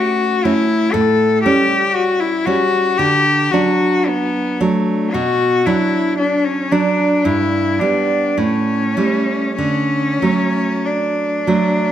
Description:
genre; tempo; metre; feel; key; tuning
romantic duo for cello and classical guitar; 47-61 BPM; 4/4; rubato; D major; A4 = 440 Hz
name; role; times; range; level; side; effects
clear cello; melody; 0.0-11.9 s; A3 to A4; -16 LUFS; left 3 dB; slapback echo
nylon-string guitar; accompaniment; 0.0-11.9 s; G2 to D4; -18 LUFS; right 3 dB; none
room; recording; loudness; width
wet recital hall reverb, RT60 1.4 s; none; -14 LUFS; side -10 dB against mid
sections
0.0-11.9 A section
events
none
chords
0.0 A; 0.9 A7; 3.0 D; 5.1 Bm; 7.3 Em/G; 8.4 A7; 9.6 D

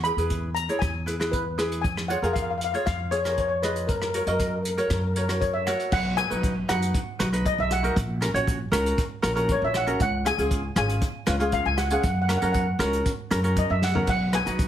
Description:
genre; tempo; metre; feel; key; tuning
calypso; 118 BPM; 4/4; straight; B major; A4 = 439 Hz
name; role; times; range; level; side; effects
steel pan; melody; 0.0-14.7 s; A#4 to B5; -27 LUFS; left 1 dB; plate reverb
upright bass; bass; 0.0-14.7 s; G#1 to F#2; -27 LUFS; equal; none
unplugged drum kit; drums; 0.0-14.7 s; crash cymbal, hi-hat, kick drum, rim click, snare drum, toms; -29 LUFS; equal; none
ukulele; accompaniment; 0.1-14.7 s; C#4 to D#5; -28 LUFS; equal; none
room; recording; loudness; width
moderate studio reverb, RT60 0.6 s; heavily compressed radio sound, multiband compression, lossy compression artefacts; -22 LUFS; side -10 dB against mid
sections
0.0-5.9 A section; 5.9-14.7 B section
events
drum fill 13.8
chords
0.0 E; 1.8 C#/E#; 3.9 F#; 5.9 B; 8.0 F#/A#; 10.0 C#; 12.0 F#; 14.1 B

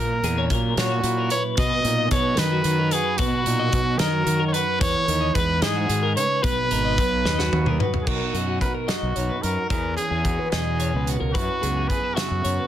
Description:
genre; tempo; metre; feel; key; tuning
math rock and midwest emo; 74 BPM (dotted quarters); 6/8; straight; B major; A4 = 440 Hz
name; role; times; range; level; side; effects
clear trumpet; melody; 0.0-12.7 s; F#4 to D#5; -25 LUFS; equal; plate reverb
clean electric guitar; accompaniment; 0.0-12.7 s; F#2 to A#4; -29 LUFS; right 8 dB; none
twelve-string electric guitar; arpeggios; 0.0-12.7 s; F#4 to E5; -29 LUFS; left 5 dB; tremolo, plate reverb
fuzz fingered electric bass; bass; 0.0-12.6 s; G#1 to D#3; -25 LUFS; left 1 dB; overdrive
loose indie drum kit; drums; 0.2-12.6 s; crash cymbal, hi-hat, kick drum, snare drum, toms; -26 LUFS; equal; none
room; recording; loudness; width
light reverb; dense, heavily limited modern master; -20 LUFS; side -11 dB against mid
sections
0.0-8.1 A section; 8.1-12.7 B section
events
drum fill 7.3-8.1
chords
0.0 F#7; 1.6 Bmaj7; 4.8 Emaj7; 6.4 B6; 8.1 Bmaj7; 9.7 E69; 11.4 F#9sus4

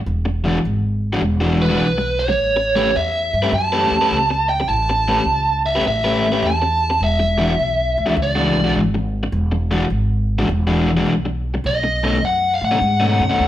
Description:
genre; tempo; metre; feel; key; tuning
electric blues shuffle; 104 BPM; 4/4; swing 67% on 8ths; E mixolydian; A4 = 439 Hz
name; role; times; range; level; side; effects
upright bass; bass; 0.0-13.5 s; E1 to A2; -21 LUFS; equal; none
overdriven semi-hollow guitar; riff; 0.3-13.4 s; B2 to B4; -20 LUFS; left 1 dB; none
biting lead guitar; melody; 1.6-13.5 s; B4 to A5; -18 LUFS; right 1 dB; overdrive
room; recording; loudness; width
light reverb; band playing live in one room; -16 LUFS; side -12 dB against mid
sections
0.0-13.5 A section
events
none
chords
0.0 E9; 2.4 A9; 7.0 E9; 11.6 B9

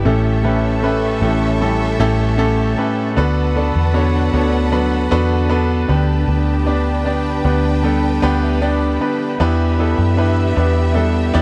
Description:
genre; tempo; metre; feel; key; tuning
pop ballad; 77 BPM; 4/4; straight; unclear; A4 = 439 Hz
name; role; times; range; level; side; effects
clear grand piano; accompaniment; 0.0-11.4 s; A2 to A5; -21 LUFS; equal; none
muted studio string section; sustained chords; 0.0-11.4 s; G4 to C#6; -32 LUFS; equal; none
fingerpicked plugged-in steel-string acoustic guitar; arpeggios; 0.0-11.4 s; A2 to B4; -26 LUFS; equal; none
vintage muted fingered electric bass; bass; 0.0-11.4 s; A1 to F#2; -20 LUFS; equal; none
downlifter; sound effects; 0.0-3.2 s; none; barely audible; none; none
warm studio violin section; second line; 0.1-11.4 s; B3 to G5; -28 LUFS; equal; none
room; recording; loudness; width
little or no reverb; dry, close 1970s-style studio recording; -17 LUFS; mono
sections
0.0-11.4 A section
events
grand piano fill 1.6-3.2, 7.1-9.4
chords
0.0 A7; 3.2 D6; 5.9 G/D; 9.4 Em7

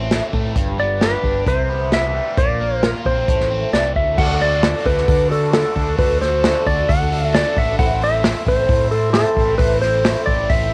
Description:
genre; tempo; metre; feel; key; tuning
folk rock and heartland rock; 133 BPM; 4/4; straight; unclear; A4 = 440 Hz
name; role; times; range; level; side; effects
picked twelve-string acoustic guitar; accompaniment; 0.0-10.7 s; A2 to C5; -32 LUFS; equal; none
biting overdriven guitar; riff; 0.0-10.7 s; G2 to C5; -30 LUFS; equal; phaser, cassette tape
picked electric bass; bass; 0.0-10.7 s; G1 to D3; -25 LUFS; equal; none
unplugged drum kit; drums; 0.1-10.6 s; crash cymbal, hi-hat, kick drum, snare drum; -22 LUFS; equal; none
clean lap steel guitar; melody; 0.8-10.7 s; A4 to F#5; -21 LUFS; equal; cassette tape
reed electric piano; accompaniment; 4.2-10.2 s; E4 to E5; -34 LUFS; equal; none
bright tonewheel organ; sustained chords; 4.2-10.7 s; A4 to E6; -39 LUFS; equal; none
room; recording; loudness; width
light reverb, small room reverb; home recording on cassette; -17 LUFS; mono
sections
0.0-4.2 A section; 4.2-10.7 B section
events
none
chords
0.0 Am; 0.6 G; 1.5 Cmaj7; 2.4 Bbadd9; 3.3 Am; 4.2 D; 7.8 Am

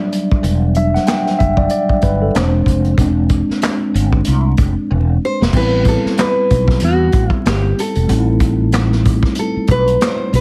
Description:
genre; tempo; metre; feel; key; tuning
R&B, neo-soul; 94 BPM; 4/4; swing 59% on 16ths; unclear; A4 = 443 Hz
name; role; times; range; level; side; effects
mellow tine electric piano; accompaniment; 0.0-10.4 s; F#3 to G5; -20 LUFS; equal; none
unplugged drum kit; drums; 0.1-10.4 s; crash cymbal, handclaps, hi-hat, kick drum, snare drum; -20 LUFS; equal; none
mellow fretless electric bass; bass; 0.4-10.4 s; E1 to E2; -18 LUFS; equal; ensemble chorus
nylon-string guitar; melody; 5.2-10.4 s; F#4 to B#4; -20 LUFS; equal; slapback echo
room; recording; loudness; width
little or no reverb; heavily compressed radio sound, vinyl crackle; -15 LUFS; mono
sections
0.0-3.0 A section; 3.0-5.5 B section; 5.5-10.4 C section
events
tine electric piano solo 0.0-3.0, 3.0-5.5; drum fill 4.9-5.5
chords
0.0 Em7; 2.3 Eaug7; 3.0 E7b13; 5.5 Am9

